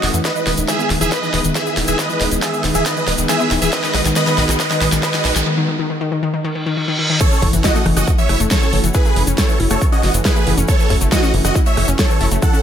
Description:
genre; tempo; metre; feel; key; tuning
uplifting trance; 138 BPM; 4/4; straight; F# dorian; A4 = 439 Hz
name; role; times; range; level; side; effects
big supersaw lead; melody; 0.0-12.6 s; F#4 to F#5; -20 LUFS; right 1 dB; phaser, sidechain pumping, low-pass filter, digital delay
lush unison pad; sustained chords; 0.0-12.6 s; D#3 to F#4; -24 LUFS; right 1 dB; chorus, sidechain pumping
wide unison pluck; arpeggios; 0.0-12.6 s; D#3 to E4; -22 LUFS; left 4 dB; sidechain pumping, digital delay
tight sequencer bass; bass; 0.0-12.4 s; E1 to F#2; -20 LUFS; equal; sidechain pumping
big-room dance drum kit; drums; 0.0-12.5 s; crash cymbal, hi-hat, rim click, snare drum; -22 LUFS; right 1 dB; high-pass filter on hats, high-pass filter on snare, high-pass filter on cymbals, high-pass filter on room
egg shaker; percussion; 0.1-12.6 s; none; -27 LUFS; left 3 dB; none
electronic kick drum; drums; 0.2-12.5 s; none; -17 LUFS; equal; high-pass filter on kick, high-pass filter on room
riser, reverse cymbal and impact; sound effects; 2.7-8.9 s; none; -26 LUFS; right 1 dB; none
room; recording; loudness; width
light reverb, digital ambience; none; -14 LUFS; side -9 dB against mid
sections
0.0-7.2 A section; 7.2-12.6 B section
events
build-up 0.0-7.2; drum fill 0.0-5.5; filter sweep on supersaw synth 0.0-7.2; filter sweep on synth arpeggio sound 0.0-7.2; break 5.5-7.2; reverse cymbal 6.5-7.2; drop 7.2-12.6; impact 7.2-8.9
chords
0.2 Emaj7; 3.7 B6; 7.2 F#m7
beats
| 0.25 0.69 1.12 1.55 | 1.99 2.42 2.86 3.29 | 3.73 4.16 4.60 5.03 | 5.47 5.90 6.34 6.77 | 7.21 7.64 8.08 8.51 | 8.95 9.38 9.81 10.25 | 10.69 11.12 11.55 11.99 | 12.42

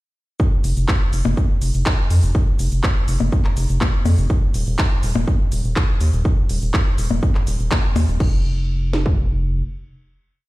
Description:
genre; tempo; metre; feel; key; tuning
melodic techno; 123 BPM; 4/4; straight; unclear; A4 = 440 Hz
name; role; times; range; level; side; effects
techno drum kit; drums; 0.4-9.2 s; kick drum, snare drum; -18 LUFS; equal; none
techno drum kit; drums; 0.4-8.3 s; crash cymbal, handclaps, hi-hat, percussion blips, shaker; -25 LUFS; left 2 dB; none
round analog bass; bass; 0.6-9.6 s; Eb1 to F2; -18 LUFS; equal; sidechain pumping
room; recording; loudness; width
little or no reverb; played on a big sound system in a bare room, stone room reverb; -16 LUFS; side -19 dB against mid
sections
0.4-8.2 drop; 8.2-10.5 final chord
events
drop 0.4-8.2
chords
none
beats
| 0.40 0.89 1.37 1.86 | 2.35 2.84 3.32 3.81 | 4.30 4.79 5.28 5.76 | 6.25 6.74 7.23 7.71 | 8.20 8.69 9.18

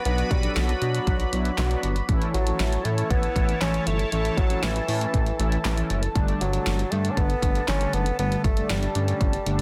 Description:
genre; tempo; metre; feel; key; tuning
synth-pop; 118 BPM; 4/4; straight; unclear; A4 = 440 Hz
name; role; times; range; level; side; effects
warm bassoon; melody; 0.0-9.6 s; E3 to C#4; -32 LUFS; equal; tape echo
sweeping resonant pad; sustained chords; 0.0-9.6 s; E4 to B5; -35 LUFS; equal; chorus
mellow synth brass; accompaniment; 0.1-9.6 s; D3 to A4; -32 LUFS; equal; chorus
chorused synth bass; bass; 0.1-9.6 s; F#1 to B2; -28 LUFS; equal; none
pop drum kit; drums; 0.1-9.6 s; handclaps, hi-hat, kick drum, snare drum; -29 LUFS; equal; none
room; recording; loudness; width
light reverb; dense, heavily limited modern master; -24 LUFS; mono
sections
0.0-9.6 A section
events
none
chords
0.0 Bm; 2.1 A; 6.2 Gsus2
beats
| 0.05 0.56 1.07 1.58 | 2.09 2.60 3.10 3.61 | 4.12 4.63 5.14 5.65 | 6.16 6.66 7.17 7.68 | 8.19 8.70 9.21

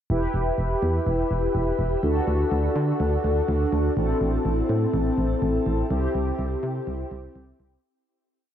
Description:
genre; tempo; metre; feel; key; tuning
synth-pop; 124 BPM; 4/4; straight; E minor; A4 = 440 Hz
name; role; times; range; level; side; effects
mellow synth brass; accompaniment; 0.1-7.8 s; C4 to B4; -24 LUFS; left 1 dB; chorus, shimmer reverb
solid FM bass; bass; 0.1-7.8 s; E1 to D3; -25 LUFS; equal; none
room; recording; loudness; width
wet huge ambient reverb, RT60 7.2 s; dreamy mix soaked in reverb; -21 LUFS; side -10 dB against mid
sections
0.1-7.8 verse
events
fade-out 5.9-7.8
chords
0.1 Em; 2.0 D; 4.0 Am; 5.9 C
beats
| 0.10 0.58 1.07 1.55 | 2.03 2.52 3.00 3.49 | 3.97 4.45 4.94 5.42 | 5.91 6.39 6.87 7.36

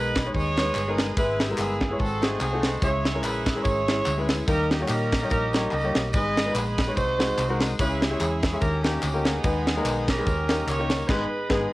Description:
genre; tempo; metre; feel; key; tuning
uptempo gospel; 145 BPM; 4/4; swing 56% on 8ths; G# harmonic minor; A4 = 435 Hz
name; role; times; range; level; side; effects
warm horn section; melody; 0.0-11.7 s; B3 to D#5; -28 LUFS; right 2 dB; cassette tape
clear grand piano; accompaniment; 0.0-11.7 s; G#2 to E5; -28 LUFS; left 2 dB; cassette tape
bright tonewheel organ; sustained chords; 0.0-11.7 s; G4 to E6; -38 LUFS; right 1 dB; overdrive, slow rotary speaker, cassette tape
hollow-body short-scale fingered electric bass; bass; 0.0-11.7 s; G1 to A#2; -29 LUFS; equal; none
crisp fusion drum kit; drums; 0.2-11.6 s; crash cymbal, kick drum, ride cymbal, snare drum; -27 LUFS; equal; cassette tape
tambourine and handclaps; percussion; 0.2-11.0 s; none; -38 LUFS; left 2 dB; none
room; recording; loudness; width
light reverb; home recording on cassette; -22 LUFS; side -18 dB against mid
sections
0.0-11.7 A section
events
band accent 11.1-11.7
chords
0.0 G#m; 1.2 E/G#; 2.0 G#7b9; 2.8 C#m; 4.5 D#; 6.1 G#m; 7.0 G#7/B#; 7.8 C#m; 8.6 D#7; 9.4 G#m/D#; 10.3 D#7; 11.1 G#m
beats
0.35 0.76 | 1.17 1.59 2.00 2.41 | 2.83 3.24 3.65 4.07 | 4.48 4.89 5.31 5.72 | 6.13 6.55 6.96 7.38 | 7.79 8.20 8.61 9.03 | 9.44 9.85 10.26 10.68 | 11.09 11.50

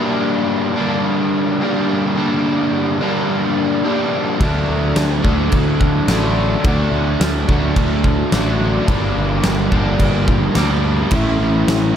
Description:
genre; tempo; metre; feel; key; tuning
rock, shoegaze and dream pop; 107 BPM; 4/4; straight; unclear; A4 = 438 Hz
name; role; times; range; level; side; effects
overdriven electric guitar; riff; 0.0-12.0 s; G2 to E4; -17 LUFS; equal; lush chorus
growling picked electric bass; bass; 4.4-11.9 s; G1 to D2; -19 LUFS; equal; overdrive
big rock drum kit; drums; 4.4-11.8 s; crash cymbal, kick drum, snare drum; -19 LUFS; equal; none
room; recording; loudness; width
moderate plate reverb, RT60 2.0 s; dreamy mix soaked in reverb; -14 LUFS; side -9 dB against mid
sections
0.0-12.0 A section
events
none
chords
0.0 Gm; 4.4 D; 8.9 Gm; 11.1 A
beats
0.49 1.05 1.61 | 2.17 2.73 3.29 3.85 | 4.41 4.96 5.52 6.08 | 6.64 7.20 7.76 8.32 | 8.88 9.44 10.00 10.56 | 11.12 11.68

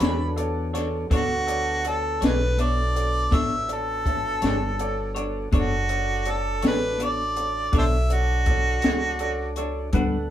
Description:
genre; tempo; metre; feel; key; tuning
slow blues; 54 BPM (dotted quarters); 12/8; straight; B minor; A4 = 440 Hz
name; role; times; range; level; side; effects
clear harmonica; melody; 0.0-9.5 s; F#4 to B5; -26 LUFS; right 1 dB; overdrive
clear grand piano; accompaniment; 0.0-10.2 s; A4 to F#5; -32 LUFS; right 2 dB; none
semi-hollow electric guitar; accompaniment; 0.0-10.2 s; G3 to C#5; -30 LUFS; left 3 dB; tremolo
mellow tonewheel organ; sustained chords; 0.0-10.3 s; B3 to F#5; -34 LUFS; equal; slow rotary speaker
upright bass; bass; 0.0-10.3 s; F#1 to E2; -27 LUFS; equal; none
compact cocktail drum kit; drums; 0.0-10.1 s; hi-hat, kick drum, snare drum; -25 LUFS; left 1 dB; none
room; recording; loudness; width
wet small room reverb, RT60 0.5 s; band playing live in one room; -21 LUFS; side -11 dB against mid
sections
0.0-10.3 A section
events
none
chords
0.0 Bm9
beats
0.01 | 1.11 2.22 3.32 4.43 | 5.53 6.63 7.74 8.84 | 9.94

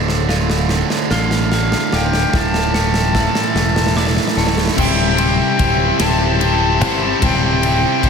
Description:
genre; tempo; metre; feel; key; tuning
post-rock; 49 BPM (dotted quarters); 6/8; straight; unclear; A4 = 445 Hz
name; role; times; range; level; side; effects
clean electric guitar; arpeggios; 0.0-8.1 s; D2 to C5; -26 LUFS; left 3 dB; none
glockenspiel with soft plastic mallets; arpeggios; 0.0-4.8 s; D6 to A6; -31 LUFS; right 2 dB; diffuse ambient delay
distorted electric guitar; riff; 0.0-8.1 s; D2 to C5; -20 LUFS; right 8 dB; overdrive
growling fingered electric bass; bass; 0.0-8.1 s; D1 to A1; -19 LUFS; left 1 dB; overdrive
big rock drum kit; drums; 0.1-8.1 s; crash cymbal, kick drum, ride cymbal, snare drum; -20 LUFS; equal; none
accordion; melody; 1.1-8.1 s; F5 to A5; -21 LUFS; left 2 dB; diffuse ambient delay
distorted electric guitar; riff; 4.8-8.1 s; C3 to C5; -19 LUFS; left 11 dB; distortion
room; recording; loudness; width
wet cathedral reverb, RT60 6.3 s; dreamy mix soaked in reverb; -13 LUFS; side -6 dB against mid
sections
0.0-4.8 A section; 4.8-8.1 B section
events
build-up 0.0-4.8; drum fill 0.0-4.8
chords
0.0 Dm7; 2.3 Asus4/D; 4.8 Cadd9/D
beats
1.12 | 2.34 3.56 | 4.78 6.00 | 7.22

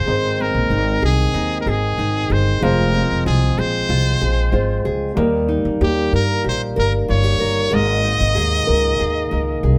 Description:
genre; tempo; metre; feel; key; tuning
pop; 94 BPM; 4/4; straight; Ab major; A4 = 440 Hz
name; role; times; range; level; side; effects
brilliant trumpet; melody; 0.0-9.8 s; G4 to Eb5; -24 LUFS; equal; none
dark upright piano; accompaniment; 0.0-9.8 s; G3 to C5; -29 LUFS; equal; none
nylon-string guitar; accompaniment; 0.0-9.8 s; Ab2 to Bb4; -25 LUFS; equal; none
percussive tonewheel organ; sustained chords; 0.1-9.8 s; Eb3 to C4; -29 LUFS; equal; overdrive, stopped rotary speaker
upright bass; bass; 0.1-9.8 s; F1 to G2; -22 LUFS; equal; none
room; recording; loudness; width
light reverb; band playing live in one room; -18 LUFS; mono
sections
0.0-9.8 A section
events
none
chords
0.1 Ab; 2.6 Fm; 5.2 Eb; 7.7 Absus2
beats
| 0.08 0.71 1.35 1.98 | 2.62 3.25 3.89 4.53 | 5.16 5.80 6.44 7.08 | 7.71 8.35 8.99 9.63

